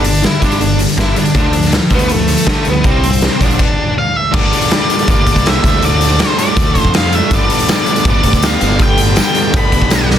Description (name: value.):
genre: indie rock.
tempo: 161 BPM.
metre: 4/4.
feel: straight.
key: unclear.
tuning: A4 = 443 Hz.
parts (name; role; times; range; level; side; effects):
octave-fuzz lead guitar; melody; 0.0-10.1 s; A3 to B5; -17 LUFS; left 1 dB; distortion.
overdriven electric guitar; riff; 0.0-10.2 s; G2 to D4; -17 LUFS; equal; none.
modern bright fingered electric bass; bass; 0.0-10.2 s; G1 to D3; -17 LUFS; equal; none.
raw garage drum kit; drums; 0.0-10.2 s; crash cymbal, hi-hat, kick drum, snare drum; -14 LUFS; equal; none.
dark analog pad; sustained chords; 4.9-10.2 s; G3 to A4; -26 LUFS; right 2 dB; none.
tambourine; percussion; 7.7-10.0 s; none; -28 LUFS; right 10 dB; none.
room: light reverb, small room reverb.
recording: dense, heavily limited modern master.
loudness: -10 LUFS.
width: side -10 dB against mid.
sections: 0.0-4.3 A section; 4.3-10.2 B section.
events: stop 3.6-4.3.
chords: 0.0 G5; 1.4 Dm; 2.9 C5; 3.4 Bb; 4.3 Gm; 5.6 Dm; 7.3 Gadd9.